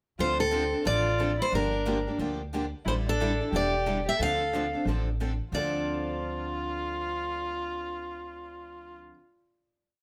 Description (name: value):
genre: acoustic string swing (jazz manouche)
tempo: 180 BPM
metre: 4/4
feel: swing 62% on 8ths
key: D minor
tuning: A4 = 440 Hz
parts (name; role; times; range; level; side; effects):
- picked steel-string acoustic guitar; melody; 0.2-9.1 s; A4 to F5; -31 LUFS; equal; none
- warm violin; second line; 0.2-9.0 s; C4 to A4; -36 LUFS; equal; none
- picked steel-string acoustic guitar; accompaniment; 0.2-9.2 s; D3 to A4; -38 LUFS; equal; none
- picked steel-string acoustic guitar; accompaniment; 0.2-9.2 s; D3 to A4; -41 LUFS; equal; none
- upright bass; bass; 0.2-9.1 s; E1 to D2; -35 LUFS; equal; none
room: light reverb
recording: none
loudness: -29 LUFS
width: mono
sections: 0.2-5.5 A section; 5.5-8.2 final chord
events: none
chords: 0.2 Dm7; 1.5 Gm7; 2.9 A7sus4; 4.2 Dm7